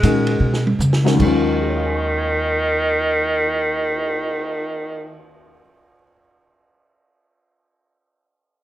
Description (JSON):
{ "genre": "modal jazz", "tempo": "148 BPM", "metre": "4/4", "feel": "swing 63% on 8ths", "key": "Eb minor", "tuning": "A4 = 440 Hz", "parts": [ { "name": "bright tenor saxophone", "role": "melody", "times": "0.0-5.2 s", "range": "Eb3 to Ab3", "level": "-20 LUFS", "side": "right 1 dB", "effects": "plate reverb" }, { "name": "warm baby grand piano", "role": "accompaniment", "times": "0.0-6.2 s", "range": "Eb2 to Ab6", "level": "-21 LUFS", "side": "left 3 dB", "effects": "none" }, { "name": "upright bass", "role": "bass", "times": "0.0-5.5 s", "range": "Eb2 to Db3", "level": "-21 LUFS", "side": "equal", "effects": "none" }, { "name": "vintage drum kit", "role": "drums", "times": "0.0-4.4 s", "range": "crash cymbal, cymbal swell, hi-hat, kick drum, ride cymbal, snare drum, toms", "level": "-28 LUFS", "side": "right 2 dB", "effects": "none" } ], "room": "moderate studio reverb, RT60 0.8 s", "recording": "none", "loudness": "-17 LUFS", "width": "side -13 dB against mid", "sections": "0.0-1.2 A section; 1.2-4.4 B section", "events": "slowing down 0.0-1.2; drum fill 0.4-1.2", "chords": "0.0 Abm11; 1.2 Ebm11" }